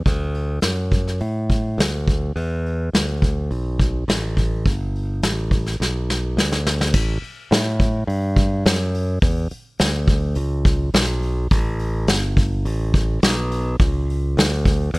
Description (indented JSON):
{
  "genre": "blues rock power trio and southern rock",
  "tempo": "105 BPM",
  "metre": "4/4",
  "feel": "straight",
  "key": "A mixolydian",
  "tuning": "A4 = 439 Hz",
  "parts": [
    { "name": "modern bright fingered electric bass", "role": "bass", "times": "0.0-15.0 s", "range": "G1 to A2", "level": "-21 LUFS", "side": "equal", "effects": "none" },
    { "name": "vintage brush drum kit", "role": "drums", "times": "0.1-15.0 s", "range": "crash cymbal, hi-hat, kick drum, snare drum", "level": "-19 LUFS", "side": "equal", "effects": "none" }
  ],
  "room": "little or no reverb",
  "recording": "none",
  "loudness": "-18 LUFS",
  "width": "side -24 dB against mid",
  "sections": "0.0-6.9 A section; 6.9-15.0 B section",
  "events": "drum fill 5.8-6.9",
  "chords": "none",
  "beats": "| 0.07 0.64 1.21 1.78 | 2.36 2.93 3.50 4.08 | 4.65 5.22 5.79 6.36 | 6.94 7.51 8.08 8.65 | 9.22 9.79 10.36 10.93 | 11.51 12.08 12.65 13.22 | 13.79 14.36 14.94"
}